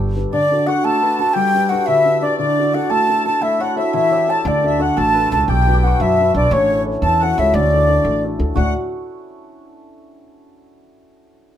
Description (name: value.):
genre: celtic folk, Celtic jig.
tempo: 116 BPM (dotted quarters).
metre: 6/8.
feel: straight.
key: D major.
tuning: A4 = 439 Hz.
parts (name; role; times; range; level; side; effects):
cimbalom; second line; 0.0-10.9 s; C#4 to C5; -23 LUFS; right 3 dB; none.
dark concert grand piano; accompaniment; 0.0-8.7 s; D2 to D5; -23 LUFS; left 4 dB; none.
upright bass; bass; 0.0-0.2, 4.5-8.7 s; G1 to F#2; -19 LUFS; right 1 dB; none.
mellow baroque flute; melody; 0.3-8.7 s; C#5 to A5; -17 LUFS; equal; none.
accordion; second line; 0.3-8.7 s; C#5 to A5; -25 LUFS; left 4 dB; light tremolo tuning.
room: moderate studio reverb, RT60 0.6 s.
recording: minimal, uncompressed stereo recording.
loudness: -14 LUFS.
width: side -10 dB against mid.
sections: 0.3-8.6 A section; 8.6-9.6 B section.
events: none.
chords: 0.3 D; 1.4 G; 2.4 D; 3.4 A; 4.4 D; 5.5 Bm; 6.5 A; 7.5 D.